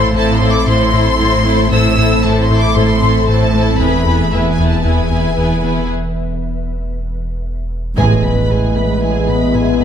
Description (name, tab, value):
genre	cinematic, hybrid orchestral and electronic film score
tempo	115 BPM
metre	4/4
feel	straight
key	unclear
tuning	A4 = 438 Hz
part	warm symphonic violin section	melody	0.0-5.9 s	E5 to E6	-19 LUFS	left 2 dB	low-pass filter
part	dark symphonic violin section	second line	0.0-9.8 s	G#4 to B5	-21 LUFS	left 2 dB	none
part	warm studio viola section	accompaniment	0.0-9.8 s	G#3 to G#4	-21 LUFS	right 1 dB	low-pass filter
part	ethereal airy pad	sustained chords	0.0-9.8 s	E3 to E5	-20 LUFS	left 2 dB	ensemble chorus, built-in reverb, low-pass filter
part	round analog bass	riff	0.0-9.8 s	E2 to A3	-19 LUFS	left 1 dB	low-pass filter
part	warm sub bass	bass	0.0-9.8 s	E1 to A1	-20 LUFS	equal	none
part	warm symphonic cello section	bass	0.0-9.8 s	E2 to A2	-19 LUFS	right 1 dB	none
part	warm concert grand piano	texture	1.7-9.8 s	A4 to C5	-29 LUFS	left 1 dB	none
part	clear trombone section	sustained chords	8.0-9.8 s	E3 to G#3	-23 LUFS	right 4 dB	low-pass filter
part	mellow French horn section	sustained chords	8.0-9.8 s	B3 to B4	-21 LUFS	left 1 dB	low-pass filter
part	warm symphonic double bass section	bass	8.0-9.8 s	A1	-19 LUFS	right 4 dB	none
part	impact	sound effects	8.0-9.8 s	none	-23 LUFS	equal	none
room	moderate recital hall reverb, RT60 1.7 s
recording	none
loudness	-12 LUFS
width	side -8 dB against mid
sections	0.0-8.0 A section; 8.0-9.8 B section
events	break 5.9-8.0; band accent 8.0-8.5; impact 8.0-9.8; filter sweep 8.0-9.8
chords	0.0 Am; 3.8 E; 8.0 E/A